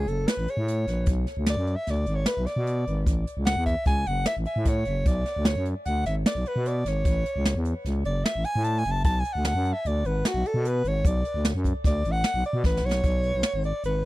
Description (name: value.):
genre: progressive instrumental, band music in an uneven meter.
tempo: 150 BPM.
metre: 5/4.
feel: straight.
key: B dorian.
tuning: A4 = 440 Hz.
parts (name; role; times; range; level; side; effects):
breathy soprano saxophone; melody; 0.0-14.1 s; F#4 to A5; -29 LUFS; equal; tape echo.
growling FM bass; bass; 0.0-14.0 s; F#1 to B2; -26 LUFS; equal; none.
jazz brush drum kit; drums; 0.1-13.9 s; hi-hat, kick drum, snare drum; -25 LUFS; equal; none.
room: small room ambience.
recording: dry, close 1970s-style studio recording.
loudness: -23 LUFS.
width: side -17 dB against mid.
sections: 0.0-13.0 A section; 13.0-14.1 B section.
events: soprano saxophone solo 0.0-13.0; drum fill 12.6-13.0.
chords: 0.0 A; 1.1 Bm; 3.1 A; 5.1 Bm; 7.1 A; 9.1 Bm; 11.0 Bm7; 13.0 Bsus2.